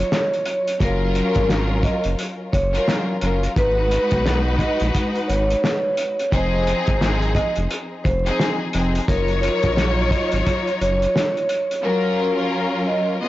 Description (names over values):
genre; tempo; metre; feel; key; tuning
hip hop, boom-bap hip-hop; 87 BPM; 4/4; swing 60% on 16ths; unclear; A4 = 440 Hz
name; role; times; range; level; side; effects
vibraphone with medium mallets; melody; 0.0-13.1 s; Bb4 to Eb5; -24 LUFS; right 1 dB; high-pass filter, low-pass filter
warm symphonic string section; accompaniment; 0.0-13.3 s; Db3 to Eb5; -22 LUFS; left 1 dB; cassette tape, high-pass filter, low-pass filter
round analog bass; bass; 0.0-11.1 s; F1 to Cb2; -22 LUFS; equal; tube saturation
cloth-damped thuddy drum kit; drums; 0.1-11.8 s; hi-hat, kick drum, snare drum; -24 LUFS; equal; none
room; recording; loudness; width
moderate small room reverb, RT60 0.5 s; blown-out, overdriven recording, vinyl crackle, overdrive, nothing above 7.7 kHz; -18 LUFS; side -16 dB against mid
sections
0.0-13.3 A section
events
none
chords
0.0 Ebm7/Gb; 0.8 Gbmaj7; 3.6 Abm7; 6.3 Fm7; 9.1 Ebm7/Gb; 11.8 Gbmaj7